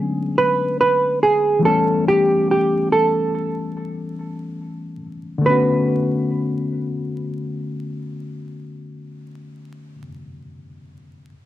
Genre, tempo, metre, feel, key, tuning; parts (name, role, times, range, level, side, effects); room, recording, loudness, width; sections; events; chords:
hip hop; 71 BPM; 4/4; swing 57% on 16ths; B minor; A4 = 442 Hz
reed electric piano; accompaniment; 0.0-11.3 s; D3 to F#4; -23 LUFS; left 3 dB; cassette tape
hollow-body jazz guitar; melody; 0.4-10.0 s; G4 to B4; -17 LUFS; right 2 dB; cassette tape
moderate small room reverb, RT60 0.5 s; home recording on cassette, vinyl crackle; -17 LUFS; side -13 dB against mid
0.0-5.4 A section; 5.4-8.8 B section
0.0 Bm13/D; 1.6 A9; 5.4 Bm7